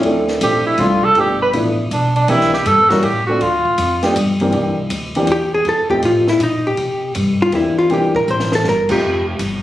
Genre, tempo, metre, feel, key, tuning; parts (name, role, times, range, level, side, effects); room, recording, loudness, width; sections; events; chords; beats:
jazz, small-group swing and bop; 160 BPM; 3/4; swing 66% on 8ths; C mixolydian; A4 = 441 Hz
warm tenor saxophone; second line; 0.0-4.0 s; D4 to B4; -15 LUFS; right 1 dB
warm baby grand piano; accompaniment; 0.0-9.0 s; E3 to Bb4; -18 LUFS; left 1 dB
upright bass; bass; 0.0-9.6 s; F1 to C3; -21 LUFS; equal
compact cocktail drum kit; drums; 0.0-9.5 s; crash cymbal, hi-hat, kick drum, ride cymbal, snare drum; -27 LUFS; equal
hollow-body jazz guitar; melody; 5.3-9.3 s; Eb4 to C5; -16 LUFS; left 1 dB
moderate studio reverb, RT60 0.7 s; recorded on a phone in the room, studio reverb, compression; -13 LUFS; side -14 dB against mid
0.0-4.5 A section; 4.5-9.6 A section
tenor saxophone solo 0.0-4.5; hollow-body jazz guitar solo 4.5-9.6; drum fill 8.3-8.6
0.0 Dm7; 1.2 G9; 2.3 C9; 3.0 F69/A; 3.4 Dm; 4.2 G5; 4.5 C9; 5.7 F9; 6.8 C9; 9.0 Fsus2
| 0.04 0.41 0.79 | 1.16 1.53 1.91 | 2.28 2.66 3.03 | 3.40 3.78 4.15 | 4.53 4.90 5.28 | 5.65 6.03 6.40 | 6.78 7.15 7.52 | 7.90 8.27 8.65 | 9.02 9.40